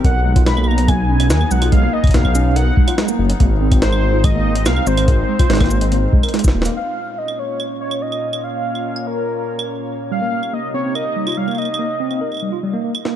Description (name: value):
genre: IDM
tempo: 143 BPM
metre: 4/4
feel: straight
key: unclear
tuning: A4 = 440 Hz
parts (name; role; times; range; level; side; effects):
- warm velvety synth lead; melody; 0.0-13.0 s; Bb4 to B5; -23 LUFS; left 1 dB; chorus, digital delay
- warbly tape-like pad; sustained chords; 0.0-13.0 s; Bb2 to Db5; -26 LUFS; left 2 dB; chorus, built-in reverb
- mellow tine electric piano; arpeggios; 0.0-6.7, 10.1-13.1 s; G3 to Bb4; -22 LUFS; right 2 dB; medium stereo tremolo, tape echo
- dark detuned saw bass; bass; 0.0-6.7 s; Eb1 to D#2; -16 LUFS; equal; tube saturation
- electronic kick drum; drums; 0.0-6.5 s; none; -15 LUFS; equal; studio reverb
- jungle sampler-style drum kit; drums; 0.0-13.1 s; claves, hi-hat, shaker, snare drum; -23 LUFS; right 1 dB; studio reverb
room: little or no reverb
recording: dark, warm production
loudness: -15 LUFS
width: side -10 dB against mid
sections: 0.0-6.8 A section; 6.8-13.2 B section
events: drum fill 6.3-6.8; band accent 6.6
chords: 0.0 B; 3.4 Ab; 6.8 Bbm; 10.1 Cm7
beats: | 0.04 0.46 0.88 1.30 | 1.72 2.14 2.56 2.98 | 3.40 3.82 4.24 4.66 | 5.08 5.50 5.92 6.34 | 6.76 7.18 7.60 8.02 | 8.44 8.86 9.28 9.70 | 10.11 10.53 10.95 11.37 | 11.79 12.21 12.63 13.05